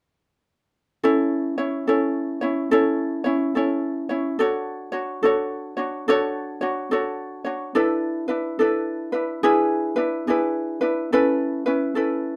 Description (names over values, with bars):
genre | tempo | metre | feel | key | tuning
hawaiian | 72 BPM | 4/4 | swing 64% on 8ths | A major | A4 = 440 Hz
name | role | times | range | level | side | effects
ukulele | accompaniment | 1.0-12.4 s | C#4 to C#5 | -23 LUFS | equal | none
room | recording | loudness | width
moderate small room reverb, RT60 0.5 s | none | -23 LUFS | mono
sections
1.1-12.4 A section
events
none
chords
1.1 A; 4.4 Dmaj7; 7.8 E7sus4; 9.4 E7; 11.1 Aadd9